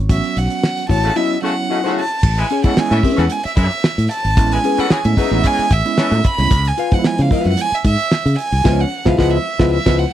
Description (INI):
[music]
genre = funk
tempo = 112 BPM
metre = 4/4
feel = straight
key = unclear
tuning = A4 = 441 Hz
[part]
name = modern bright fingered electric bass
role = bass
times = 0.0-10.0 s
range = G#1 to C#3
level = -17 LUFS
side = equal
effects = none
[part]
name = warm violin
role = melody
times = 0.1-10.1 s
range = E5 to B5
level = -20 LUFS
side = right 3 dB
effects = none
[part]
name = tine electric piano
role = stabs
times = 0.1-10.0 s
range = E#3 to F#4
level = -21 LUFS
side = right 4 dB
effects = medium stereo tremolo
[part]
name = damped 70s drum kit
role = drums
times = 0.1-10.0 s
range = crash cymbal, hi-hat, kick drum, snare drum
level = -17 LUFS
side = equal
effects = none
[part]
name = hollow-body jazz guitar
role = accompaniment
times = 0.9-10.1 s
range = C#4 to E#5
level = -20 LUFS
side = left 10 dB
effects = none
[part]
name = warm horn section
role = second line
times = 1.0-6.2 s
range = C#3 to B4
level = -24 LUFS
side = left 2 dB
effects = none
[sound]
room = studio reverb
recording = dry, close 1970s-style studio recording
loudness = -14 LUFS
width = side -12 dB against mid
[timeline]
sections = 0.0-2.2 A section; 2.2-10.1 B section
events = band accent 0.1-2.2, 8.6-10.1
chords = 0.0 A6; 2.2 Amaj9; 6.5 C#7#9